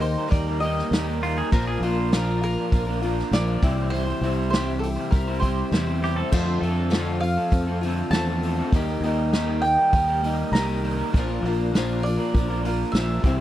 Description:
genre	folk rock and heartland rock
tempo	100 BPM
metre	4/4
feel	straight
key	unclear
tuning	A4 = 439 Hz
part	mandolin	melody	0.0-13.4 s	A4 to Bb5	-27 LUFS	right 1 dB	none
part	picked acoustic archtop guitar	accompaniment	0.0-13.4 s	F2 to G4	-29 LUFS	left 6 dB	none
part	mellow tonewheel organ	sustained chords	0.0-13.4 s	F4 to Eb6	-37 LUFS	equal	slow rotary speaker, chorus vibrato
part	electric guitar at the edge of break-up	riff	0.0-13.4 s	Bb2 to C5	-28 LUFS	right 3 dB	none
part	fingered electric bass	bass	0.0-13.4 s	Bb1 to F2	-26 LUFS	equal	none
part	vintage drum kit	drums	0.0-13.4 s	crash cymbal, hi-hat, kick drum, snare drum	-23 LUFS	equal	none
part	pedal steel guitar	second line	1.2-7.1 s	F4 to C5	-30 LUFS	right 2 dB	none
room	little or no reverb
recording	dry, close 1970s-style studio recording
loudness	-21 LUFS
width	side -13 dB against mid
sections	0.0-13.4 A section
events	none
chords	0.0 Eb; 1.5 Bb; 3.6 C; 6.3 F6; 8.7 Eb; 11.1 Bb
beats	0.31 0.91 | 1.52 2.12 2.72 3.32 | 3.92 4.52 5.12 5.72 | 6.32 6.92 7.53 8.12 | 8.73 9.33 9.93 10.53 | 11.13 11.73 12.33 12.93

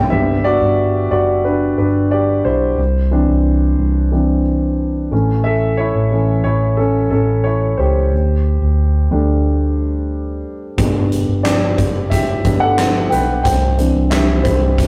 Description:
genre	piano-driven pop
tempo	90 BPM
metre	4/4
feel	straight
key	G major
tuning	A4 = 441 Hz
part	warm concert grand piano	accompaniment	0.0-14.9 s	E3 to G5	-19 LUFS	equal	none
part	vintage muted fingered electric bass	bass	0.1-14.9 s	F#1 to D2	-19 LUFS	equal	none
part	huge arena drum kit	drums	10.8-14.9 s	handclaps, hi-hat, kick drum, snare drum	-21 LUFS	equal	none
room	wet small room reverb, RT60 0.5 s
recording	rough rehearsal-room recording, tube saturation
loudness	-16 LUFS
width	mono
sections	0.1-14.9 A section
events	grand piano solo 0.1-14.9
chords	0.1 G; 2.8 Cadd9; 5.1 A; 8.1 Dsus4; 10.8 G; 13.4 Cadd9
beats	| 0.12 0.78 1.45 2.12 | 2.78 3.45 4.12 4.78 | 5.45 6.12 6.78 7.45 | 8.12 8.78 9.45 10.12 | 10.78 11.45 12.12 12.78 | 13.45 14.12 14.78

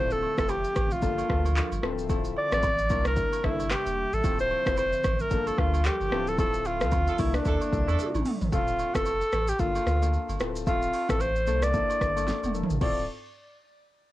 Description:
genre	afrobeats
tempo	112 BPM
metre	4/4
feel	swing 58% on 16ths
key	D minor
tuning	A4 = 440 Hz
part	breathy alto saxophone	melody	0.0-13.1 s	D4 to D5	-28 LUFS	equal	low-pass filter, cassette tape
part	soft electric-piano-like synth keys	accompaniment	0.0-13.0 s	Bb3 to E5	-34 LUFS	left 8 dB	chorus, low-pass filter
part	airy breathy pad	sustained chords	0.1-8.5 s	C3 to E5	-40 LUFS	right 1 dB	chorus
part	warm sub bass	bass	0.0-13.1 s	D1 to E2	-30 LUFS	equal	none
part	deep house drum kit	drums	0.1-13.0 s	crash cymbal, handclaps, hi-hat, kick drum, rim click, shaker, snare drum, toms	-30 LUFS	equal	overdrive, cassette tape
part	agogo bells and woodblock	percussion	0.2-13.1 s	none	-40 LUFS	right 10 dB	none
part	mellow horn section	second line	7.1-8.1 s	D4 to A4	-34 LUFS	right 9 dB	none
room	little or no reverb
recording	home recording on cassette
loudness	-24 LUFS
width	side -16 dB against mid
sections	0.0-8.5 A section; 8.5-12.8 B section; 12.8-14.1 C section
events	band accent 6.4-8.5; drum fill 8.0-8.5, 12.3-12.8; filter sweep 8.5-12.8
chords	0.0 Dm7; 1.0 Gm7; 1.8 Dm7; 2.9 C13; 4.2 Dm7; 5.3 Gm7; 6.1 Dm7; 7.2 C13; 8.5 Dm7; 9.6 Gm7; 10.4 Dm7; 11.5 C13; 12.8 Dm7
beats	0.49 1.03 1.56 | 2.10 2.63 3.17 3.71 | 4.24 4.78 5.31 5.85 | 6.38 6.92 7.46 7.99 | 8.53 9.06 9.60 10.13 | 10.67 11.21 11.74 12.28 | 12.81

